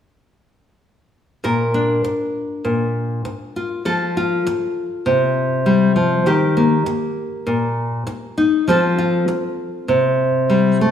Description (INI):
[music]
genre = folk, solo fingerstyle acoustic guitar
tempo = 99 BPM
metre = 4/4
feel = straight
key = Bb major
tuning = A4 = 439 Hz
[part]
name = nylon-string guitar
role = solo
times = 1.4-10.9 s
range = Bb2 to Bb4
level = -16 LUFS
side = left 1 dB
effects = none
[sound]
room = wet recital hall reverb, RT60 1.6 s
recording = none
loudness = -16 LUFS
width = side -9 dB against mid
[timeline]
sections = 1.4-10.9 A section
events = none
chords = 1.4 Bb; 3.8 F; 6.3 Eb; 8.7 F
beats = | 1.43 2.04 2.64 3.25 | 3.85 4.45 5.05 5.65 | 6.26 6.86 7.46 8.07 | 8.67 9.28 9.89 10.50